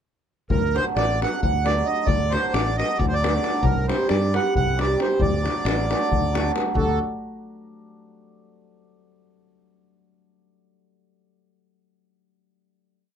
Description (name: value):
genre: balkan folk, Balkan wedding band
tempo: 269 BPM (eighths)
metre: 7/8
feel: straight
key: D phrygian dominant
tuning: A4 = 441 Hz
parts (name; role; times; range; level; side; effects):
- accordion; melody; 0.5-7.0 s; A4 to F#5; -25 LUFS; right 3 dB; none
- modern bright fingered electric bass; bass; 0.5-7.0 s; A1 to G2; -25 LUFS; equal; none
- davul; percussion; 0.5-7.0 s; none; -25 LUFS; left 3 dB; none
- cimbalom; accompaniment; 0.7-7.0 s; F#3 to G4; -27 LUFS; right 3 dB; none
room: moderate small room reverb, RT60 0.6 s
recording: none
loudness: -20 LUFS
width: side -8 dB against mid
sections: 0.5-6.8 A section; 6.8-8.3 final chord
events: none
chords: 0.5 D; 3.6 Cm; 5.2 D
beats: | 0.50 0.73 0.95 1.18 1.40 1.63 1.85 | 2.08 2.30 2.52 2.75 2.97 3.19 3.42 | 3.64 3.86 4.08 4.30 4.53 4.75 4.97 | 5.19 5.42 5.64 5.86 6.08 6.30 6.53 | 6.75 6.97